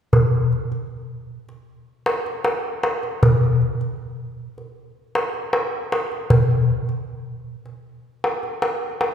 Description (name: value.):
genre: arabic.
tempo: free time.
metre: none.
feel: none.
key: none.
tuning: none.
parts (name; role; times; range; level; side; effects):
darbuka; percussion; 0.1-9.1 s; none; -19 LUFS; equal; none.
room: wet scoring stage reverb, RT60 1.9 s.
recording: recorded in a church or concert hall.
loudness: -19 LUFS.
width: side -8 dB against mid.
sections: 0.1-9.1 A section.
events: none.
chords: none.